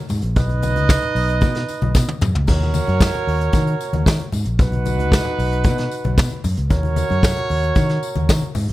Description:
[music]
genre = disco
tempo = 114 BPM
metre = 4/4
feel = straight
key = Eb minor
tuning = A4 = 440 Hz
[part]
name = warm horn section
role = stabs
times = 0.0-8.5 s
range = D#4 to D#5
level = -23 LUFS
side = right 3 dB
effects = none
[part]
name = fingered electric bass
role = bass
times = 0.1-8.7 s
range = Bb1 to Eb3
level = -20 LUFS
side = equal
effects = none
[part]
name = vintage brush drum kit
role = drums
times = 0.1-8.7 s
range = crash cymbal, hi-hat, kick drum, snare drum, toms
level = -19 LUFS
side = equal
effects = none
[part]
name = congas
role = percussion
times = 0.1-8.7 s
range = none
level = -28 LUFS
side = left 4 dB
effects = none
[part]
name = tambourine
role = percussion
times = 0.1-8.7 s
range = none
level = -36 LUFS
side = left 14 dB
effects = none
[sound]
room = small room ambience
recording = none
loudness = -16 LUFS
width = side -16 dB against mid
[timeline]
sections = 0.0-8.7 A section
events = drum fill 2.0-2.5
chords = 0.4 B; 2.5 Ebm7; 4.6 B; 6.7 Ebm7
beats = | 0.37 0.90 1.42 1.95 | 2.48 3.01 3.54 4.06 | 4.59 5.12 5.65 6.18 | 6.71 7.23 7.76 8.29

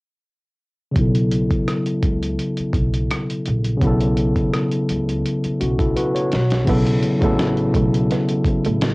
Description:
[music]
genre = R&B, neo-soul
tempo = 84 BPM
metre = 4/4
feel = swing 53% on 16ths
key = unclear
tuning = A4 = 439 Hz
[part]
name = overdriven tine electric piano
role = accompaniment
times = 0.9-8.9 s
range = C#3 to C#5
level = -19 LUFS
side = equal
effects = low-pass filter, cassette tape
[part]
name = upright bass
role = bass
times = 1.0-8.9 s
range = A1 to C#2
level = -23 LUFS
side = equal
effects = none
[part]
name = dusty soul sampler-style drum kit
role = drums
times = 1.0-8.9 s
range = crash cymbal, hi-hat, kick drum, rim click, snare drum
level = -23 LUFS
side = equal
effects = overdrive, cassette tape
[part]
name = hollow-body jazz guitar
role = second line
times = 6.7-8.8 s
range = A3 to B3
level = -26 LUFS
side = right 4 dB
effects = cassette tape, analog delay
[sound]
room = light reverb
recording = home recording on cassette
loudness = -17 LUFS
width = side -24 dB against mid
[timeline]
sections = 1.0-6.7 A section; 6.7-8.9 B section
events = filter sweep on tine electric piano 1.0-6.7; drum fill 6.0-6.7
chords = 1.0 B9sus4; 6.3 Bsus2; 6.7 B9sus4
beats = | 0.95 1.67 2.38 3.10 | 3.81 4.53 5.24 5.96 | 6.67 7.38 8.10 8.81

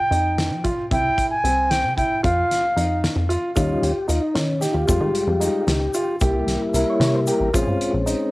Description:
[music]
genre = progressive instrumental, band music in an uneven meter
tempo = 226 BPM (eighths)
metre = 5/8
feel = straight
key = unclear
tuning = A4 = 439 Hz
[part]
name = concert flute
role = melody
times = 0.0-3.0 s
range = F5 to Ab5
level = -21 LUFS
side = equal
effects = cassette tape, analog delay
[part]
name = warm concert grand piano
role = arpeggios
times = 0.1-8.3 s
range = C4 to G4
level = -26 LUFS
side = right 2 dB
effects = cassette tape
[part]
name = plucky analog bass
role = bass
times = 0.1-8.2 s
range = A1 to F3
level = -23 LUFS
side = equal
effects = none
[part]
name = loose indie drum kit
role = drums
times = 0.1-8.2 s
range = hi-hat, kick drum, snare drum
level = -26 LUFS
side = equal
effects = cassette tape
[part]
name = mellow tonewheel organ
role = accompaniment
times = 3.6-8.3 s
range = G3 to Db5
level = -22 LUFS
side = left 2 dB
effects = overdrive, fast rotary speaker, cassette tape
[part]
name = egg shaker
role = percussion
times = 3.6-8.3 s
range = none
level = -35 LUFS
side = left 4 dB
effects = none
[sound]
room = light reverb, studio ambience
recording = home recording on cassette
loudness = -18 LUFS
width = side -20 dB against mid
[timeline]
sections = 0.0-3.6 A section; 3.6-8.3 B section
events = tonewheel organ solo 3.6-8.3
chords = 0.0 Fsus2; 0.9 C; 2.2 Ebsus2/F; 3.6 Eb7; 4.9 Fmadd9; 6.2 C7; 7.5 Bbm7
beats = 0.11 0.37 0.64 | 0.91 1.17 1.44 1.71 1.97 | 2.24 2.50 2.77 3.03 3.30 | 3.57 3.83 4.10 4.36 4.63 | 4.89 5.16 5.42 5.69 5.95 | 6.22 6.49 6.75 7.01 7.28 | 7.54 7.81 8.07

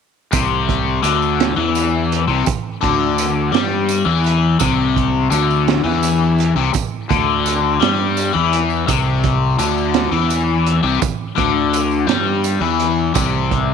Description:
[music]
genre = psychedelic rock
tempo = 56 BPM (dotted quarters)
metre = 6/8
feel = straight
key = C major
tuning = A4 = 439 Hz
[part]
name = biting overdriven guitar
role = riff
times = 0.3-13.7 s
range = C3 to G3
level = -17 LUFS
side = left 9 dB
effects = phaser
[part]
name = fuzz fingered electric bass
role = bass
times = 0.3-13.7 s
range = C2 to G2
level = -19 LUFS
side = right 3 dB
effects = overdrive
[part]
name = crunchy breakbeat drum kit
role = drums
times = 0.3-13.7 s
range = hi-hat, kick drum, snare drum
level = -22 LUFS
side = right 8 dB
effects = none
[part]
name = tambourine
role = percussion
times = 0.3-13.3 s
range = none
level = -30 LUFS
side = right 18 dB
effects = none
[sound]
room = light reverb, small room ambience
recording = 1960s-style stereo with parts hard left and right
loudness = -14 LUFS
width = side -6 dB against mid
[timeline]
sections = 0.3-13.7 A section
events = none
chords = 0.3 C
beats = | 0.32 1.39 | 2.46 3.53 | 4.60 5.67 | 6.74 7.81 | 8.88 9.95 | 11.02 12.09 | 13.15

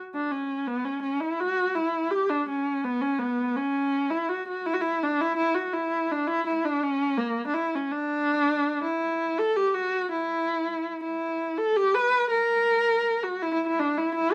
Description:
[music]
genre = musette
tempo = 165 BPM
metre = 3/4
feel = straight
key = unclear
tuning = A4 = 439 Hz
[part]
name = warm viola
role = solo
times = 0.1-14.3 s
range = A#3 to B4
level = -26 LUFS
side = equal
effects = none
[sound]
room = moderate studio ambience, RT60 0.5 s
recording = band playing live in one room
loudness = -26 LUFS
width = mono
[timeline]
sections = 0.3-14.3 A section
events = none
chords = none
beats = | 0.31 0.68 1.04 | 1.40 1.76 2.12 | 2.48 2.84 3.20 | 3.56 3.92 4.29 | 4.66 5.02 5.38 | 5.74 6.11 6.46 | 6.83 7.19 7.55 | 7.91 8.28 8.65 | 9.02 9.38 9.75 | 10.11 10.48 10.84 | 11.20 11.56 11.93 | 12.29 12.66 13.02 | 13.39 13.76 14.12

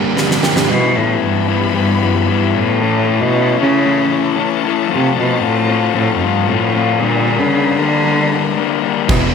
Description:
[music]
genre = quiet-loud alternative rock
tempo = 114 BPM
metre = 4/4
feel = straight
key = E dorian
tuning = A4 = 445 Hz
[part]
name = rich cello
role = melody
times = 0.0-9.2 s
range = F2 to G3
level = -16 LUFS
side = right 2 dB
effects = slapback echo
[part]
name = picked steel-string acoustic guitar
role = arpeggios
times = 0.0-0.7 s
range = G2 to G4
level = -22 LUFS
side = right 9 dB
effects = none
[part]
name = raw garage guitar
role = riff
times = 0.0-9.3 s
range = G2 to F4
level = -16 LUFS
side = left 14 dB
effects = overdrive
[part]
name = thick fuzz guitar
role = riff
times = 0.0-0.7, 9.1-9.3 s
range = D3 to E4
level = -18 LUFS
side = right 11 dB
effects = distortion
[part]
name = huge arena drum kit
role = drums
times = 0.2-0.7, 9.1-9.2 s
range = crash cymbal, kick drum, snare drum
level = -19 LUFS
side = right 1 dB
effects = none
[part]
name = clear symphonic string section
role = sustained chords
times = 0.7-9.3 s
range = E4 to B5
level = -26 LUFS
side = left 1 dB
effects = none
[part]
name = fuzz fingered electric bass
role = bass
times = 9.1-9.3 s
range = E1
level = -18 LUFS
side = right 1 dB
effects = overdrive
[sound]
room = small room ambience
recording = none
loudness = -12 LUFS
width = side -6 dB against mid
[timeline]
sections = 0.7-9.3 A section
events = break 0.0-0.7; drum fill 0.2-0.7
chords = 0.0 Gm; 0.7 Em; 2.8 A; 4.9 F; 7.0 Gm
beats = 0.18 | 0.71 1.23 1.76 2.28 | 2.81 3.33 3.85 4.38 | 4.90 5.43 5.95 6.48 | 7.00 7.52 8.05 8.57 | 9.10

